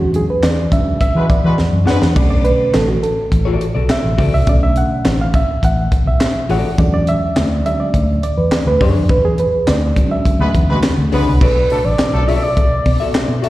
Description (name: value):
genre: funk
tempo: 104 BPM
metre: 4/4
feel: straight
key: B dorian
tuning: A4 = 441 Hz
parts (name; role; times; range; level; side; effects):
- reed electric piano; stabs; 0.0-10.8 s; D3 to F#5; -18 LUFS; right 2 dB; fast tremolo, slapback echo
- fingered electric bass; bass; 0.0-13.4 s; A1 to E3; -16 LUFS; equal; none
- tight funk drum kit; drums; 0.1-13.5 s; crash cymbal, handclaps, hi-hat, kick drum, snare drum; -17 LUFS; equal; none
- mellow horn section; second line; 1.2-2.1, 10.4-12.2 s; F#3 to B4; -22 LUFS; equal; slapback echo
- vintage hollow-body jazz guitar; accompaniment; 1.9-13.5 s; D4 to E5; -23 LUFS; left 5 dB; slapback echo
- expressive synth lead; melody; 11.4-13.4 s; B4 to E5; -18 LUFS; right 1 dB; chorus, slapback echo, tape echo
room: light reverb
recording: live gig heard through the venue's PA, recital hall reverb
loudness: -12 LUFS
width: side -16 dB against mid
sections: 0.0-11.4 A section; 11.4-13.5 B section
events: band accent 0.0-2.2, 9.1-11.4; reed electric piano solo 0.0-11.4; drum fill 1.6-2.2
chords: 0.0 E13; 2.2 Bm7; 6.8 E13; 11.4 Bm7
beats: 0.43 1.01 1.58 | 2.16 2.74 3.32 3.90 | 4.47 5.05 5.63 6.21 | 6.79 7.36 7.94 8.52 | 9.10 9.68 10.25 10.83 | 11.41 11.99 12.56 13.14